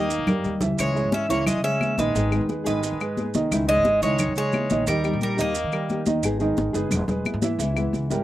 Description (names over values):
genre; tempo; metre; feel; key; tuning
latin, Cuban son and guajira; 176 BPM; 4/4; straight; unclear; A4 = 440 Hz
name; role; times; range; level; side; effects
Cuban tres; melody; 0.0-6.0 s; A#4 to E5; -25 LUFS; right 1 dB; none
bright trumpet; second line; 0.0-6.0 s; G3 to C#4; -33 LUFS; left 5 dB; slapback echo
nylon-string guitar; accompaniment; 0.0-8.2 s; C#3 to G#4; -28 LUFS; left 2 dB; none
warm baby grand piano; arpeggios; 0.0-8.2 s; D#3 to E5; -27 LUFS; right 3 dB; slapback echo
upright bass; bass; 0.0-8.2 s; E1 to D#3; -29 LUFS; equal; none
maracas; percussion; 0.1-8.2 s; none; -36 LUFS; right 7 dB; none
claves; percussion; 0.3-7.9 s; none; -33 LUFS; left 7 dB; slapback echo
congas; percussion; 0.3-8.2 s; none; -27 LUFS; left 2 dB; none
room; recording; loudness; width
little or no reverb; recorded outdoors, with no room sound; -21 LUFS; side -14 dB against mid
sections
0.0-6.2 A section; 6.2-8.2 B section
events
drum fill 0.0-0.8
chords
0.0 D#; 0.8 C#m; 2.1 G#m; 3.5 C#madd9; 4.9 D#; 6.2 G#m; 6.9 E; 7.6 C#m7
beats
0.10 0.44 | 0.78 1.12 1.47 1.81 | 2.15 2.49 2.83 3.17 | 3.51 3.85 4.19 4.53 | 4.87 5.21 5.55 5.89 | 6.23 6.57 6.91 7.25 | 7.59 7.93